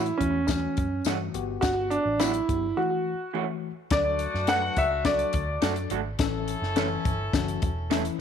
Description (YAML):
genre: uptempo 1960s-style soul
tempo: 105 BPM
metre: 4/4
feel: straight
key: unclear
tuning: A4 = 440 Hz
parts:
  - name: warm concert grand piano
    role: melody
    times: 0.0-5.9 s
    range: C#4 to F#5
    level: -26 LUFS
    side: right 1 dB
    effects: slapback echo
  - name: tine electric piano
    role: accompaniment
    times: 0.0-8.2 s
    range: E3 to B4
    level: -34 LUFS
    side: left 13 dB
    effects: overdrive, fast stereo tremolo
  - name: electric guitar through a small old amp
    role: stabs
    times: 0.0-8.0 s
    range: E3 to A4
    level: -33 LUFS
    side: right 14 dB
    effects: none
  - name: vintage muted picked electric bass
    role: bass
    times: 0.0-8.1 s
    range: E1 to A2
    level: -32 LUFS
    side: right 1 dB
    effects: none
  - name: compact cocktail drum kit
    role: drums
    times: 0.1-8.2 s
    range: hi-hat, kick drum, snare drum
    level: -28 LUFS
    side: left 3 dB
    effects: none
  - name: tambourine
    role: percussion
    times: 0.5-2.3 s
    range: none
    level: -39 LUFS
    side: left 18 dB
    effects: none
  - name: warm horn section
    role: second line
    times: 3.9-8.2 s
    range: A3 to A4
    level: -35 LUFS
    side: left 2 dB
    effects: none
room: light reverb, small room ambience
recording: 1960s-style stereo with parts hard left and right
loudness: -24 LUFS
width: side -8 dB against mid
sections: 0.0-3.9 A section; 3.9-8.2 B section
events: break 2.8-3.9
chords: 0.0 F#m7; 1.3 Gmaj7; 2.8 F#m7; 3.9 D; 6.2 A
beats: 0.48 1.06 | 1.63 2.20 2.77 3.34 | 3.91 4.48 5.05 5.63 | 6.20 6.77 7.34 7.91